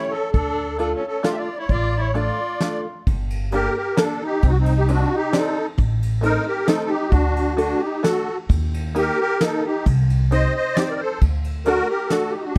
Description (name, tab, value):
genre	musette waltz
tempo	133 BPM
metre	3/4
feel	straight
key	D harmonic minor, G harmonic minor from 3.1 s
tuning	A4 = 440 Hz
part	musette accordion	melody	0.0-12.6 s	C4 to E5	-25 LUFS	equal	none
part	warm violin	second line	0.0-2.8 s	C#4 to G4	-31 LUFS	equal	none
part	open-back banjo	accompaniment	0.0-12.4 s	A3 to C5	-26 LUFS	equal	none
part	upright bass	bass	0.3-12.6 s	G1 to Eb2	-23 LUFS	equal	none
part	soft brush drum kit	drums	0.3-12.6 s	hi-hat, kick drum, ride cymbal, snare drum	-25 LUFS	equal	none
room	little or no reverb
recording	dark, warm production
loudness	-21 LUFS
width	mono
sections	0.0-3.1 A section; 3.1-12.6 B section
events	none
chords	0.3 Dm; 3.1 Gmadd9; 4.4 Cmadd9; 5.8 Adim; 7.1 D; 8.5 Eb; 9.9 Cm; 11.2 D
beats	| 0.35 0.79 1.24 | 1.70 2.15 2.61 | 3.07 3.53 3.98 | 4.44 4.89 5.34 | 5.79 6.23 6.68 | 7.13 7.58 8.04 | 8.50 8.96 9.41 | 9.86 10.31 10.77 | 11.21 11.66 12.11 | 12.56